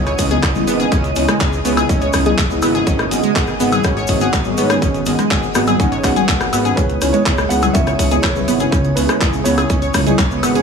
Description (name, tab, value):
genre	progressive house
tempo	123 BPM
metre	4/4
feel	straight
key	C# minor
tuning	A4 = 440 Hz
part	shimmering ambient pad	sustained chords	0.0-10.6 s	C#3 to F#4	-23 LUFS	right 3 dB	chorus, built-in reverb, phaser, sidechain pumping
part	analog pluck	arpeggios	0.0-10.6 s	G#3 to C#5	-21 LUFS	equal	chorus, sidechain pumping, tape echo
part	deep mellow chord stab	stabs	0.0-10.6 s	B3 to F#5	-21 LUFS	left 1 dB	chorus, phaser, sidechain pumping, tape echo
part	fat analog bass	bass	0.0-10.6 s	G#1 to G#2	-22 LUFS	equal	sidechain pumping
part	twinkling granular texture	texture	0.0-10.6 s	C#5 to D#6	-28 LUFS	right 4 dB	built-in reverb, sidechain pumping
part	house drum kit	drums	0.1-10.6 s	handclaps, hi-hat, woodblock	-23 LUFS	equal	none
part	cabasa	percussion	0.1-10.6 s	none	-31 LUFS	left 2 dB	none
part	electronic rim click and congas	percussion	0.1-10.6 s	none	-22 LUFS	left 5 dB	sidechain pumping on snare, sidechain pumping on perc
part	electronic kick drum	drums	0.2-10.3 s	none	-19 LUFS	equal	none
part	dark grand piano	melody	6.8-10.4 s	B4 to F#5	-23 LUFS	right 2 dB	sidechain pumping, tape echo
room	light reverb, digital ambience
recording	small room ambience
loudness	-13 LUFS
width	side -6 dB against mid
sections	0.0-10.6 A section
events	none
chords	0.0 C#m7; 2.9 G#m7; 6.8 C#m7